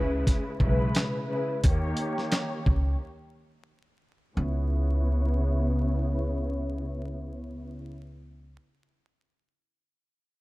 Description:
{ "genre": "hip hop, boom-bap hip-hop", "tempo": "88 BPM", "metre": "4/4", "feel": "swing 61% on 16ths", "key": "C# dorian", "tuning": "A4 = 441 Hz", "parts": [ { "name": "clear studio string section", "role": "accompaniment", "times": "0.0-7.9 s", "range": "C#3 to C#5", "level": "-31 LUFS", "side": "left 1 dB", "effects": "high-pass filter, low-pass filter" }, { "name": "upright bass", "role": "bass", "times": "0.0-8.6 s", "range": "B1 to D#2", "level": "-28 LUFS", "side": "equal", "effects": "none" }, { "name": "dusty soul sampler-style drum kit", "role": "drums", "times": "0.3-2.9 s", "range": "handclaps, hi-hat, kick drum, snare drum", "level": "-26 LUFS", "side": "equal", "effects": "none" } ], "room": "small room ambience", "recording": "vinyl crackle", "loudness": "-25 LUFS", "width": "side -20 dB against mid", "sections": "0.0-4.4 A section; 4.4-7.1 B section", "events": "filter sweep on string section 0.0-4.4; break 3.0-4.4", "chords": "0.0 C#m7; 1.6 D#7; 4.4 C#m7" }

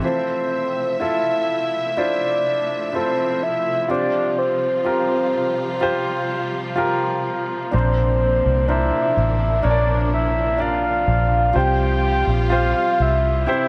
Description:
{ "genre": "pop ballad", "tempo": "62 BPM", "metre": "4/4", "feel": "straight", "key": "F major", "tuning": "A4 = 440 Hz", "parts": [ { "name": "soft octave-layered synth lead", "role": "melody", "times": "0.0-13.7 s", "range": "C5 to G5", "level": "-23 LUFS", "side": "equal", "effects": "chorus, phaser" }, { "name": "warm concert grand piano", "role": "accompaniment", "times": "0.0-13.7 s", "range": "Bb2 to D5", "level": "-26 LUFS", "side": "equal", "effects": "none" }, { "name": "warm studio string section", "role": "sustained chords", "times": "0.0-13.7 s", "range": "C3 to E5", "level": "-32 LUFS", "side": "equal", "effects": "none" }, { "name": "vintage muted fingered electric bass", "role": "bass", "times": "7.7-13.4 s", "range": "A1 to C2", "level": "-23 LUFS", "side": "equal", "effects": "none" } ], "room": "light reverb, studio reverb", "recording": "none", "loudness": "-20 LUFS", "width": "mono", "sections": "0.0-13.7 A section", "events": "none", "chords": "0.0 Fmaj7; 3.9 Csus4; 7.7 Bbadd9; 11.6 Csus4" }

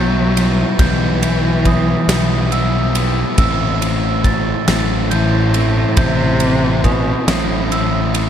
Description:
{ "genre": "post-rock", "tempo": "46 BPM (dotted quarters)", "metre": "6/8", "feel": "straight", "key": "unclear", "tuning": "A4 = 440 Hz", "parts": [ { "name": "rich cello", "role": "melody", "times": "0.0-8.3 s", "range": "A2 to F#3", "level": "-18 LUFS", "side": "equal", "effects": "tape echo" }, { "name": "granular cloud pad", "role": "sustained chords", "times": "0.0-8.3 s", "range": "E4 to C6", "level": "-32 LUFS", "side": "right 1 dB", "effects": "none" }, { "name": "glockenspiel with rubber mallets", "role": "arpeggios", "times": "0.0-8.3 s", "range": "D#6 to A6", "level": "-25 LUFS", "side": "right 3 dB", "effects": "tape echo" }, { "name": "overdriven semi-hollow guitar", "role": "riff", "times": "0.0-8.3 s", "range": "A2 to E4", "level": "-19 LUFS", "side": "left 1 dB", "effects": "none" }, { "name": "fuzz fingered electric bass", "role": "bass", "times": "0.0-8.3 s", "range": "A1 to B1", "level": "-19 LUFS", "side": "equal", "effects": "overdrive" }, { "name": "huge arena drum kit", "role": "drums", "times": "0.4-8.3 s", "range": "kick drum, ride cymbal, snare drum", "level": "-20 LUFS", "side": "equal", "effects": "none" } ], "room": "small room ambience", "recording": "dark, warm production", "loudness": "-13 LUFS", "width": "side -9 dB against mid", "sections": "0.0-8.3 A section", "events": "none", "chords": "0.0 Em/B; 3.4 Am" }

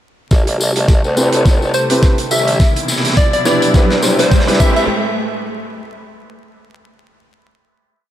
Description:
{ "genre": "glitch hop", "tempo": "105 BPM", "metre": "4/4", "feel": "swing 57% on 16ths", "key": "A minor", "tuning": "A4 = 441 Hz", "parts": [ { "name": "dark chamber string section", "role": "sustained chords", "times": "0.3-4.9 s", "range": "A2 to G4", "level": "-22 LUFS", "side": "left 1 dB", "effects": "sidechain pumping" }, { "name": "formant-sweep wobble bass", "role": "bass", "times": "0.3-4.9 s", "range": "G1 to E2", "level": "-18 LUFS", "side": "equal", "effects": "chorus, overdrive, high-pass filter" }, { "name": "damped 70s drum kit", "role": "drums", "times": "0.3-4.7 s", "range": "crash cymbal, hi-hat, snare drum", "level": "-23 LUFS", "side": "right 2 dB", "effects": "high-pass filter on hats, high-pass filter on cymbals, high-pass filter on snare, high-pass filter on room" }, { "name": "electronic kick drum", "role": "drums", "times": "0.3-4.7 s", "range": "none", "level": "-12 LUFS", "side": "equal", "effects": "none" }, { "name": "tambourine", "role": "percussion", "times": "0.3-4.9 s", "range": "none", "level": "-24 LUFS", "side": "left 3 dB", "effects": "none" }, { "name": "riser", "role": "sound effects", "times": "2.1-4.9 s", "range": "none", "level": "-23 LUFS", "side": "right 1 dB", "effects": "none" }, { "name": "dark concert grand piano", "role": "stabs", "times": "1.2-4.8 s", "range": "C4 to C5", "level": "-18 LUFS", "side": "equal", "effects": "sidechain pumping, dub echo" }, { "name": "plucky unison lead", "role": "melody", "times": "1.7-4.8 s", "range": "C5 to E5", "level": "-19 LUFS", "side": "equal", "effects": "dub echo" } ], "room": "light reverb, studio ambience", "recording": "vinyl crackle", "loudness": "-11 LUFS", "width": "side -12 dB against mid", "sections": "0.3-4.9 build; 4.9-7.2 final note", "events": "build-up 0.3-4.9; drum fill 0.3-4.9; riser 2.1-4.9", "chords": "0.3 Am7; 2.6 Cmaj7; 4.6 Am7; 4.9 N.C." }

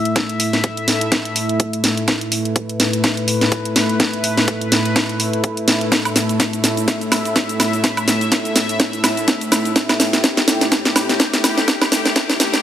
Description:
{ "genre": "bass house", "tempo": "125 BPM", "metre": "4/4", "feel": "swing 57% on 16ths", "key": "unclear", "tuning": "A4 = 440 Hz", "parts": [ { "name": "sweeping resonant pad", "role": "sustained chords", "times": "0.0-12.6 s", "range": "A2 to E5", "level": "-20 LUFS", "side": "equal", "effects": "chorus, sidechain pumping" }, { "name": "garage drum kit", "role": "drums", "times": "0.1-12.6 s", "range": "cabasa, hi-hat, snare drum, woodblock", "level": "-16 LUFS", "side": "equal", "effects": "none" }, { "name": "electronic kick drum", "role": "drums", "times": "0.2-12.3 s", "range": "none", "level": "-21 LUFS", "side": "equal", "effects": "high-pass filter on kick" } ], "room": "moderate lush hall reverb, RT60 2.4 s", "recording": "high-pass filter", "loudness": "-15 LUFS", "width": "side -10 dB against mid", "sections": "0.0-12.6 A section", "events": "build-up 0.0-12.6; drum fill 0.0-12.6", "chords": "0.0 A5" }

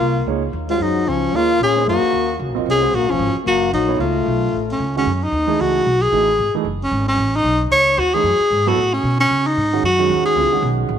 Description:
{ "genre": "modal jazz", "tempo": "226 BPM", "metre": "4/4", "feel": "swing 59% on 8ths", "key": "Eb dorian, F# dorian from 5.1 s", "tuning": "A4 = 437 Hz", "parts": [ { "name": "warm tenor saxophone", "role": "melody", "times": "0.0-10.7 s", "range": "C#4 to C#5", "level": "-17 LUFS", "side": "equal", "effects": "none" }, { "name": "breathy trombone", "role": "second line", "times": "0.0-4.9 s", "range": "F3 to Db4", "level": "-22 LUFS", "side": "left 11 dB", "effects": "none" }, { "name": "upright bass", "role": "bass", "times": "0.0-11.0 s", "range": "Eb1 to C#3", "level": "-23 LUFS", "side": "equal", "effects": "none" }, { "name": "dark concert grand piano", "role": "accompaniment", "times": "0.3-11.0 s", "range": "D3 to Eb5", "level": "-24 LUFS", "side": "right 12 dB", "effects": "none" } ], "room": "moderate plate reverb, RT60 2.9 s", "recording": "1960s-style stereo with parts hard left and right", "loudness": "-15 LUFS", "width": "side -9 dB against mid", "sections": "0.0-5.1 A section; 5.1-11.0 B section", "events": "none", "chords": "0.0 Ebm9; 4.0 Db7b13; 5.1 F#m69" }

